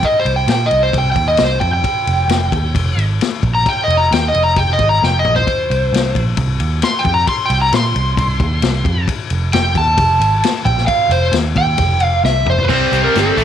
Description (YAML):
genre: blues rock power trio and southern rock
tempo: 133 BPM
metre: 4/4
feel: straight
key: unclear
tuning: A4 = 440 Hz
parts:
  - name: overdriven slide guitar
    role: melody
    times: 0.0-13.4 s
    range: A4 to C6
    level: -15 LUFS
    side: equal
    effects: slapback echo
  - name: vintage muted picked electric bass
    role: bass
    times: 0.0-13.4 s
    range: F1 to Bb2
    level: -17 LUFS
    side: right 1 dB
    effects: none
  - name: vintage drum kit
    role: drums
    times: 0.0-13.4 s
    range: crash cymbal, hi-hat, kick drum, ride cymbal, snare drum, toms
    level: -19 LUFS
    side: left 4 dB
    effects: none
  - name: distorted electric guitar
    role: riff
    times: 12.7-13.4 s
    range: A2 to C4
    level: -14 LUFS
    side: equal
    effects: overdrive
room: light reverb, small room ambience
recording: 1960s-style stereo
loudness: -12 LUFS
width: side -9 dB against mid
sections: 0.0-12.7 A section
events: electric slide guitar solo 0.0-12.7; drum fill 5.0-5.5, 12.2-12.7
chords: 0.0 Eb6 (rootless); 2.1 Fsus2; 5.7 Bbsus2 (rootless); 9.3 F5; 12.7 C5